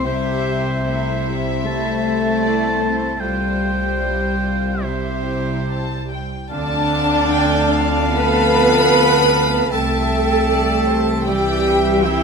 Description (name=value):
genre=cinematic, emotional film score for orchestra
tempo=75 BPM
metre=4/4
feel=uneven beats, rubato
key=unclear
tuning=A4 = 440 Hz
part: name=warm oboe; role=second line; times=0.0-12.2 s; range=C5 to A5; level=-26 LUFS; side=right 2 dB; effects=none
part: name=warm symphonic violin section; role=second line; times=0.0-12.2 s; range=E4 to B5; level=-25 LUFS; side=left 2 dB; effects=none
part: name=dark symphonic viola section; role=accompaniment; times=0.0-12.2 s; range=G3 to B4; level=-21 LUFS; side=right 2 dB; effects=none
part: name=mellow French horn section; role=sustained chords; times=0.0-12.2 s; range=C3 to A4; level=-24 LUFS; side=left 4 dB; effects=none
part: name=rich symphonic cello section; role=bass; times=0.0-12.2 s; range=C3 to B3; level=-24 LUFS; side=right 2 dB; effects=none
part: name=rich symphonic double bass section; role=bass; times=0.0-12.2 s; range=C2 to D2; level=-25 LUFS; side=right 3 dB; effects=none
part: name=rich chamber violin section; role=melody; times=0.1-12.2 s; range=C5 to A5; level=-27 LUFS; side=left 3 dB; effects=none
part: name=mellow hollow silver concert flute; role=second line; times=6.5-12.2 s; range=G5 to A5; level=-24 LUFS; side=left 4 dB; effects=none
part: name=warm clarinet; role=second line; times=6.5-12.2 s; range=C4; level=-28 LUFS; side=equal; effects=none
room=light reverb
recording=close, detailed microphones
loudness=-15 LUFS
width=side -5 dB against mid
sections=0.0-6.5 A section; 6.5-12.2 B section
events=none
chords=0.1 C; 3.2 Fadd9/C; 4.8 C; 6.5 Dm7; 9.7 Am7/C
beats=| 0.06 0.84 1.66 2.43 | 3.21 4.01 4.84 5.68 | 6.51 7.32 8.15 8.94 | 9.72 10.50 11.28 12.04